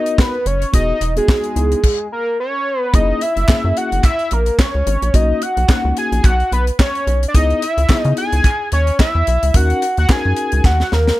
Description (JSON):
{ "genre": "early-eighties boogie funk", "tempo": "109 BPM", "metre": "4/4", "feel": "swing 56% on 16ths", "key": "unclear", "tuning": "A4 = 441 Hz", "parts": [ { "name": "fat analog lead", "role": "melody", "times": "0.0-11.2 s", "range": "G#4 to G#5", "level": "-18 LUFS", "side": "equal", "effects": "chorus, slapback echo" }, { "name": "mellow tine electric piano", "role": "accompaniment", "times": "0.0-10.7 s", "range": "A#3 to A#4", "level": "-24 LUFS", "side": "left 4 dB", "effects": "none" }, { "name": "tight funk drum kit", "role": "drums", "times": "0.1-11.2 s", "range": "crash cymbal, handclaps, hi-hat, kick drum, snare drum", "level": "-15 LUFS", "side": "equal", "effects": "none" }, { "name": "rubbery square bass", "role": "bass", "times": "0.5-11.1 s", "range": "E1 to C#3", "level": "-16 LUFS", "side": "equal", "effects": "none" }, { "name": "group handclap", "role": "percussion", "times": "3.5-10.8 s", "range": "none", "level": "-28 LUFS", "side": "right 3 dB", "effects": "none" } ], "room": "little or no reverb", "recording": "none", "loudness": "-14 LUFS", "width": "side -16 dB against mid", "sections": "0.0-2.9 A section; 2.9-11.2 B section", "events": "stop 1.8-2.9; drum fill 10.6-11.2", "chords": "0.0 G#m9 (rootless); 0.7 Emaj9; 1.6 C#m9; 2.4 N.C.; 2.9 F#7; 5.1 Bmaj9; 7.3 C#m7; 9.5 D#m7", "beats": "0.18 | 0.73 1.29 1.84 2.39 | 2.94 3.49 4.04 4.59 | 5.14 5.69 6.24 6.79 | 7.34 7.89 8.44 8.99 | 9.54 10.09 10.64 11.19" }